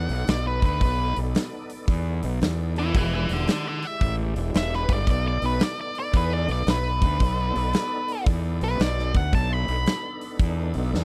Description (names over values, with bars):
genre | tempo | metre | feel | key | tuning
blues rock power trio and southern rock | 113 BPM | 4/4 | swing 65% on 8ths | unclear | A4 = 442 Hz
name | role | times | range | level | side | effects
octave-fuzz lead guitar | melody | 0.0-11.0 s | B4 to B5 | -31 LUFS | equal | distortion
tonewheel organ | sustained chords | 0.0-11.0 s | G#3 to D5 | -38 LUFS | equal | overdrive, chorus vibrato, slow rotary speaker
fuzz fingered electric bass | bass | 0.0-11.0 s | E1 to E2 | -28 LUFS | equal | overdrive
big rock drum kit | drums | 0.1-11.0 s | hi-hat, kick drum, snare drum | -26 LUFS | equal | none
room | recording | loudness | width
studio ambience | dry, close 1970s-style studio recording | -24 LUFS | mono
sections
0.0-11.0 A section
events
lead electric guitar solo 0.0-11.0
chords
0.0 B7#9; 2.9 E7#9; 5.1 B7#9